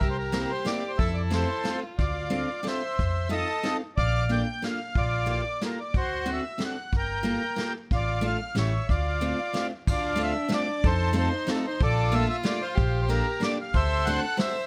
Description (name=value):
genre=musette waltz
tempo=184 BPM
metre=3/4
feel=straight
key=D minor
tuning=A4 = 441 Hz
part: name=accordion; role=melody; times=0.0-14.7 s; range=F4 to G5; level=-31 LUFS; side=equal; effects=none
part: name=warm violin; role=second line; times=0.0-2.0, 9.9-14.7 s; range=D4 to C5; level=-36 LUFS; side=equal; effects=none
part: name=upright bass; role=bass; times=0.0-14.2 s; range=G1 to F2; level=-31 LUFS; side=equal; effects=none
part: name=vintage brush drum kit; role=drums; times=0.0-14.5 s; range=crash cymbal, hi-hat, kick drum, snare drum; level=-31 LUFS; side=equal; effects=none
part: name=picked steel-string acoustic guitar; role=accompaniment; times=0.3-14.6 s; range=A3 to A4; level=-34 LUFS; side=equal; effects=none
room=little or no reverb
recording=close, detailed microphones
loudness=-27 LUFS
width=mono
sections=0.0-2.0 A section; 2.0-9.9 B section; 9.9-14.7 B section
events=none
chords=0.0 C7; 1.0 F; 2.0 Dm7; 3.0 F7; 4.0 Bbmaj7; 4.9 Gm9/Bb; 5.9 D7; 6.9 Gm9; 7.9 Dm/A; 8.6 A7; 8.9 Dm7; 10.8 F7; 11.8 Bbmaj7; 12.8 Gm9/Bb; 13.7 D7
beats=| 0.01 0.34 0.67 | 0.99 1.32 1.66 | 1.99 2.32 2.65 | 2.98 3.31 3.64 | 3.97 4.29 4.62 | 4.95 5.27 5.60 | 5.94 6.27 6.60 | 6.93 7.25 7.58 | 7.91 8.23 8.56 | 8.88 9.21 9.54 | 9.87 10.19 10.52 | 10.84 11.16 11.48 | 11.80 12.12 12.44 | 12.77 13.09 13.42 | 13.74 14.07 14.39